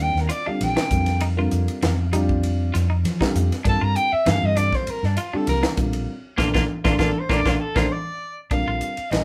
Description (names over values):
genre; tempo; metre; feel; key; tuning
electric jazz fusion; 99 BPM; 4/4; swing 53% on 16ths; Bb major; A4 = 440 Hz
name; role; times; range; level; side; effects
mellow soprano saxophone; melody; 0.0-9.2 s; D4 to Bb5; -27 LUFS; equal; none
dark baby grand piano; accompaniment; 0.0-9.2 s; D3 to Bb4; -30 LUFS; equal; none
mellow fretless electric bass; bass; 0.0-9.2 s; Bb1 to F3; -25 LUFS; equal; none
congas; percussion; 0.0-9.2 s; none; -32 LUFS; equal; none
crisp fusion drum kit; drums; 0.2-9.2 s; hi-hat, kick drum, ride cymbal, snare drum; -28 LUFS; equal; none
semi-hollow electric guitar; stabs; 0.3-9.2 s; Bb3 to F4; -31 LUFS; equal; none
room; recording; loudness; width
light reverb; band playing live in one room; -22 LUFS; mono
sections
0.0-8.5 A section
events
soprano saxophone solo 0.0-8.5; band accent 6.1-8.5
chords
0.0 Ebmaj9; 0.9 F9sus4; 3.7 Gm9; 5.8 Bbmaj13